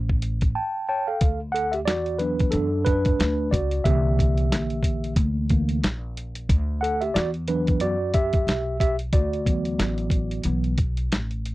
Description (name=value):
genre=hip hop, jazz-hop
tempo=91 BPM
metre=4/4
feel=swing 58% on 16ths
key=D major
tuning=A4 = 440 Hz
part: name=upright bass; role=bass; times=0.0-11.5 s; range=A1 to F#2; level=-26 LUFS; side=equal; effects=none
part: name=lo-fi sampler-style drum kit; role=drums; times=0.1-11.5 s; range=hi-hat, kick drum, snare drum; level=-23 LUFS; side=equal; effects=none
part: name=mellow tine electric piano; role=accompaniment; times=0.6-10.8 s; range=D3 to A5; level=-24 LUFS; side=right 1 dB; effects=medium stereo tremolo
room=little or no reverb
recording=dry, close 1970s-style studio recording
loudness=-21 LUFS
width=side -18 dB against mid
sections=0.0-1.2 A section; 1.2-11.5 B section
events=tine electric piano fill 0.2-1.2; break 0.6-1.2; tine electric piano solo 1.2-11.5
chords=0.0 A7; 1.2 D69; 3.9 C9; 6.5 D69